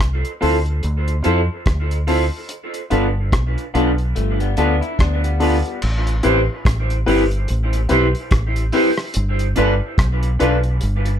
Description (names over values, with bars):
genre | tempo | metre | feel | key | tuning
lovers rock reggae | 72 BPM | 4/4 | swing 59% on 16ths | A minor | A4 = 440 Hz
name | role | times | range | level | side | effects
deep dub fingered electric bass | bass | 0.0-11.2 s | G1 to F2 | -19 LUFS | equal | none
cloth-damped thuddy drum kit | drums | 0.0-11.2 s | crash cymbal, hi-hat, kick drum, rim click | -21 LUFS | equal | none
warm grand piano | accompaniment | 0.4-10.6 s | B3 to B4 | -20 LUFS | left 4 dB | none
electric guitar through a small old amp | stabs | 0.4-11.1 s | D4 to C5 | -22 LUFS | right 3 dB | lush chorus, dub echo
electric guitar through a small old amp | arpeggios | 4.2-5.8 s | F3 to E4 | -25 LUFS | left 5 dB | none
room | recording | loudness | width
light reverb | none | -16 LUFS | side -9 dB against mid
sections
0.0-5.8 A section; 5.8-11.2 B section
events
none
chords
0.0 Dm7; 2.5 G7; 5.8 Am7; 9.1 G7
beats
0.82 1.66 | 2.49 3.32 4.15 4.99 | 5.82 6.65 7.48 8.31 | 9.14 9.98 10.81